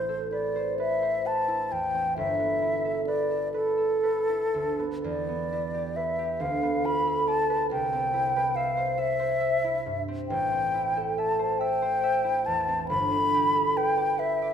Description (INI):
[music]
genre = classical, impressionist duo for flute and harp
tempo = 38-48 BPM (dotted quarters)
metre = 6/8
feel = rubato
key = A minor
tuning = A4 = 440 Hz
[part]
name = mellow silver concert flute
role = melody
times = 0.0-14.5 s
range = A4 to B5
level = -26 LUFS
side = left 1 dB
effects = none
[part]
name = concert harp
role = accompaniment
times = 0.0-14.5 s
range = G1 to E5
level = -29 LUFS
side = right 2 dB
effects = none
[sound]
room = moderate scoring stage reverb, RT60 1.6 s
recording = minimal, uncompressed stereo recording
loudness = -24 LUFS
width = side -8 dB against mid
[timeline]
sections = 0.0-14.5 A section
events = none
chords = 0.0 Amadd9; 2.2 G69; 5.0 Em7; 6.4 Dm6; 7.7 Cmaj7; 10.3 Am7; 12.9 Gadd9